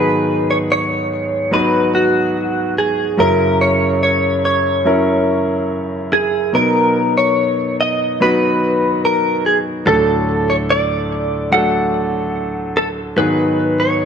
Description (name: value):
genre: pop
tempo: 72 BPM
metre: 4/4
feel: straight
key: B major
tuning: A4 = 440 Hz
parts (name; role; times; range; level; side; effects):
- direct-recorded clean electric guitar; melody; 0.0-14.1 s; F#4 to F#5; -16 LUFS; equal; lush chorus
- warm concert grand piano; accompaniment; 0.0-14.1 s; D2 to A#4; -17 LUFS; equal; none
room: moderate recital hall reverb, RT60 1.6 s, studio ambience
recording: nothing above 11.0 kHz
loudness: -14 LUFS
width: side -7 dB against mid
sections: 0.0-14.1 A section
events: none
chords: 0.0 G#m7; 3.2 F#7; 6.5 Bmaj7; 9.9 D; 13.2 G#m7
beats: 0.70 1.52 2.35 | 3.18 4.02 4.86 5.70 | 6.54 7.38 8.21 9.04 | 9.87 10.70 11.52 12.35 | 13.17 13.99